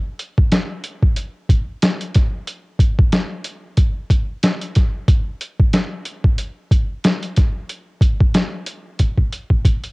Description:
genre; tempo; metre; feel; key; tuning
hip hop; 92 BPM; 4/4; swing 55% on 16ths; none; none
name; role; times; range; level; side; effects
boom bap sampler-style drum kit; drums; 0.2-9.9 s; hi-hat, kick drum, snare drum; -15 LUFS; equal; cassette tape
room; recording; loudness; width
little or no reverb; home recording on cassette; -16 LUFS; side -26 dB against mid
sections
0.0-9.9 A section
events
drum fill 9.0-9.9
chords
none

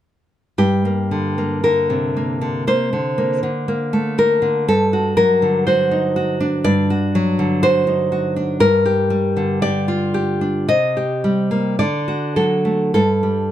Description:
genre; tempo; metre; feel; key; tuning
romantic piece for solo classical guitar; 52-61 BPM; 4/4; rubato; G minor; A4 = 440 Hz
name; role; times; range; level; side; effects
nylon-string guitar; solo; 0.6-13.5 s; G2 to Eb5; -16 LUFS; equal; none
room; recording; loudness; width
moderate small room reverb, RT60 0.6 s; dark, warm production; -16 LUFS; side -11 dB against mid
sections
0.6-13.5 A section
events
none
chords
0.6 Gm; 4.7 D7/G; 8.6 Gm; 10.7 Cm7; 11.8 D; 12.9 G5

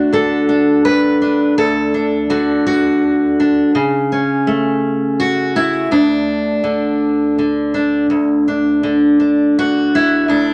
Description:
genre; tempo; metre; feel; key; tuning
folk, solo fingerstyle acoustic guitar; 55 BPM (dotted quarters); 6/8; straight; unclear; A4 = 440 Hz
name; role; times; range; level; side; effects
fingerpicked steel-string acoustic guitar; solo; 0.0-10.5 s; D2 to B4; -15 LUFS; equal; none
room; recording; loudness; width
moderate studio reverb, RT60 0.9 s; none; -15 LUFS; mono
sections
0.0-8.1 A section; 8.1-10.5 A section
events
none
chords
0.0 N.C.; 3.7 A/C#; 5.9 N.C.

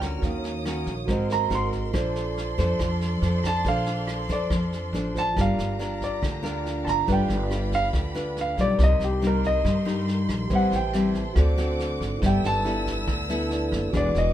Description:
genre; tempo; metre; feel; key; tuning
bossa nova; 140 BPM; 4/4; straight; Bb major, G minor from 5.4 s; A4 = 436 Hz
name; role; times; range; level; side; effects
warm baby grand piano; melody; 0.0-14.3 s; G4 to C6; -26 LUFS; right 1 dB; none
nylon-string guitar; accompaniment; 0.0-14.3 s; G2 to C5; -28 LUFS; left 2 dB; none
tine electric piano; accompaniment; 0.0-14.3 s; E4 to D6; -33 LUFS; right 5 dB; none
warm symphonic violin section; sustained chords; 0.0-14.3 s; G4 to F6; -36 LUFS; right 1 dB; none
upright bass; bass; 0.0-14.3 s; E1 to G2; -27 LUFS; equal; none
vintage brush drum kit; drums; 0.0-14.2 s; kick drum, rim click, snare drum; -32 LUFS; equal; none
room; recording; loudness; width
light reverb; minimal, uncompressed stereo recording; -22 LUFS; side -12 dB against mid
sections
0.0-5.4 A section; 5.4-14.3 A section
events
grand piano solo 0.0-14.3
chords
0.2 Ebm7; 1.1 Ab9; 1.9 Bbmaj9; 5.4 Gm7; 7.1 G7; 8.8 Cm7; 10.5 Am7; 11.4 D7; 12.2 G69

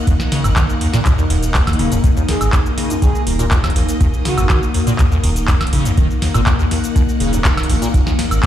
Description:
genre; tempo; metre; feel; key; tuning
acid house; 122 BPM; 4/4; straight; Eb minor; A4 = 440 Hz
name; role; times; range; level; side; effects
string machine, full ensemble; sustained chords; 0.0-8.5 s; Bb3 to Gb5; -24 LUFS; equal; ensemble chorus, sidechain pumping
warbly tape-like pad; texture; 0.0-8.5 s; Bb3; -26 LUFS; left 7 dB; chorus, built-in reverb, sidechain pumping
liquid acid bass; riff; 0.1-8.5 s; Eb2 to Eb3; -20 LUFS; equal; phaser, analog chorus, sidechain pumping, dub echo
round analog bass; bass; 0.1-8.4 s; Eb1 to Eb2; -19 LUFS; equal; sidechain pumping
booming analog drum machine; drums; 0.1-8.5 s; handclaps, hi-hat, shaker, snare drum, woodblock; -22 LUFS; right 1 dB; none
electronic kick drum; drums; 0.1-8.5 s; none; -16 LUFS; equal; none
breathy flute-like synth lead; melody; 2.3-4.6 s; Gb4 to Ab4; -27 LUFS; right 1 dB; lush chorus, vintage 12-bit sampler grit, ping-pong delay
room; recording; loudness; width
little or no reverb; played on a big sound system in a bare room, large studio reverb; -13 LUFS; side -11 dB against mid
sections
0.0-8.5 A section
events
none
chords
0.0 Eb5

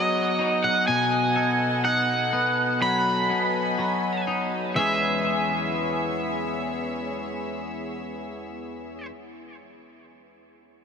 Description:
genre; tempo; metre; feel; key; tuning
rock; 62 BPM; 4/4; straight; E major; A4 = 440 Hz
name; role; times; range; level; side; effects
crunchy overdriven guitar; melody; 0.0-9.1 s; D#5 to B5; -25 LUFS; right 1 dB; tape echo
warm studio string section; sustained chords; 0.0-9.1 s; B3 to G#5; -32 LUFS; equal; none
twangy electric guitar; arpeggios; 0.0-9.1 s; E2 to A4; -27 LUFS; left 2 dB; lush chorus, tape echo
room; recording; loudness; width
wet huge ambient reverb, RT60 6.6 s; dreamy mix soaked in reverb; -22 LUFS; side -6 dB against mid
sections
0.0-4.8 A section; 4.8-8.7 B section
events
none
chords
0.0 G#m7; 0.9 B7; 4.8 E6

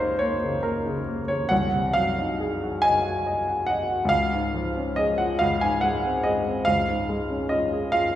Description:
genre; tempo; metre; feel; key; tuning
classical, romantic nocturne for solo piano; 47 BPM (dotted quarters); 12/8; rubato; Db major; A4 = 438 Hz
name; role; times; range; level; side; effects
warm baby grand piano; solo; 0.0-8.2 s; C2 to Ab5; -22 LUFS; equal; none
room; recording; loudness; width
wet recital hall reverb, RT60 1.7 s; recorded in a church or concert hall; -22 LUFS; side -12 dB against mid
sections
0.0-8.2 A section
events
none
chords
0.0 Eb7/Db; 1.5 Ab7/C; 4.1 Db; 5.4 Ab/Db; 6.7 Db

